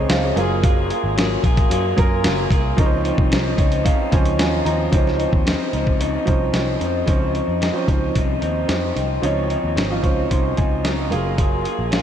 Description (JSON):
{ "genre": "indie pop, bedroom pop", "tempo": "112 BPM", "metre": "4/4", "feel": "straight", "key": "Db major", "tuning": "A4 = 440 Hz", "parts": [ { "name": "electric guitar through a small old amp", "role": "accompaniment", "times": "0.0-12.0 s", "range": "Db3 to Ab4", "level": "-23 LUFS", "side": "left 2 dB", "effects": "wide subtle chorus, warbly pitch drift" }, { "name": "warm upright piano", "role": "accompaniment", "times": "0.0-12.0 s", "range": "F3 to Db6", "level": "-24 LUFS", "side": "right 3 dB", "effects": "none" }, { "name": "vintage muted picked electric bass", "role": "bass", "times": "0.0-12.0 s", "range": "Gb1 to Gb2", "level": "-24 LUFS", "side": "equal", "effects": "none" }, { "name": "dusty soul sampler-style drum kit", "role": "drums", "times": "0.1-12.0 s", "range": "hi-hat, kick drum, snare drum", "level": "-20 LUFS", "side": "equal", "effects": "none" } ], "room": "moderate lush hall reverb, RT60 2.5 s", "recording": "dreamy mix soaked in reverb", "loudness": "-17 LUFS", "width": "side -9 dB against mid", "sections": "0.0-4.9 A section; 4.9-7.1 B section; 7.1-12.0 C section", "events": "upright piano fill 3.3-4.9, 9.8-11.4", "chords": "0.4 Gbmaj9; 2.8 Dbmaj9; 11.1 Gbmaj9" }